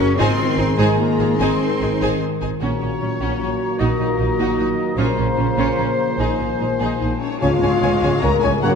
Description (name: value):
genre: cinematic, heroic adventure film score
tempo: 150 BPM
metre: 3/4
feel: straight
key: unclear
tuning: A4 = 444 Hz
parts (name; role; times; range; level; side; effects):
- warm symphonic violin section; melody; 0.0-8.7 s; Bb4 to C6; -30 LUFS; left 4 dB; none
- mellow clarinet; second line; 0.0-8.7 s; Eb4 to Db5; -30 LUFS; left 3 dB; none
- rich symphonic violin section; second line; 0.0-8.7 s; Db4 to Bb5; -30 LUFS; left 2 dB; none
- rich symphonic viola section; accompaniment; 0.0-8.8 s; Ab3 to Ab4; -27 LUFS; right 1 dB; none
- bright trombone section; sustained chords; 0.0-8.8 s; Bb2 to Db4; -27 LUFS; right 3 dB; none
- mellow French horn section; sustained chords; 0.0-8.7 s; F#3 to C5; -24 LUFS; left 3 dB; none
- concert harp; arpeggios; 0.0-8.8 s; Gb2 to Db6; -26 LUFS; left 5 dB; none
- rich symphonic cello section; bass; 0.0-8.7 s; Gb2 to Db4; -25 LUFS; right 2 dB; none
- warm symphonic double bass section; bass; 0.0-8.7 s; Gb1 to Db2; -24 LUFS; right 2 dB; none
- clear oboe; second line; 2.6-8.7 s; C5 to Gb5; -29 LUFS; equal; none
- mellow hollow concert flute; second line; 2.6-8.7 s; Ab5 to Bb5; -30 LUFS; left 3 dB; none
- cymbal swell and tam-tam; percussion; 5.0-8.8 s; none; -28 LUFS; left 2 dB; none
room: moderate concert hall reverb, RT60 2.2 s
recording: dark, warm production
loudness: -16 LUFS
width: side -6 dB against mid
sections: 0.0-2.6 A section; 2.6-7.4 B section; 7.4-8.8 C section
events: band accent 7.4-7.8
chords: 0.2 Ab; 2.6 Gb/Bb; 3.8 Ebm/Bb; 5.0 Bbmadd9; 6.2 Abadd9/Bb; 7.4 Db